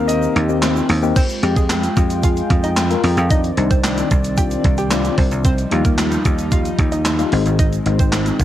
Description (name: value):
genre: dance-pop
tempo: 112 BPM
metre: 4/4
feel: straight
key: unclear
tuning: A4 = 440 Hz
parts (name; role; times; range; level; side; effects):
- warm concert grand piano; melody; 0.0-0.6 s; Eb5; -26 LUFS; right 1 dB; cassette tape, analog delay
- soft electric-piano-like synth keys; accompaniment; 0.0-8.4 s; G3 to Bb4; -23 LUFS; left 9 dB; chorus, sidechain pumping, cassette tape
- chorused pulse-width pad; sustained chords; 0.0-8.4 s; Eb3 to G5; -25 LUFS; right 1 dB; sidechain pumping, cassette tape
- dry thumbed slap bass; bass; 0.0-8.4 s; Ab1 to F2; -19 LUFS; right 1 dB; sidechain pumping
- gated 80s digital drum machine; drums; 0.1-8.4 s; crash cymbal, handclaps, hi-hat, kick drum, snare drum; -18 LUFS; right 1 dB; gated reverb, gated reverb snare
- egg shaker; percussion; 0.1-8.4 s; none; -38 LUFS; right 15 dB; none
- hollow square pluck; melody; 1.2-8.4 s; Ab3 to G5; -27 LUFS; right 1 dB; chorus, sidechain pumping, cassette tape, analog delay
room: light reverb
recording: home recording on cassette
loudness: -14 LUFS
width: side -12 dB against mid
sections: 0.0-1.2 A section; 1.2-8.4 B section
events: kick muted 0.1-1.2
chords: 0.0 Eb6; 1.2 Fmadd9; 3.3 Cmadd9; 5.4 Ebadd9; 7.3 Ab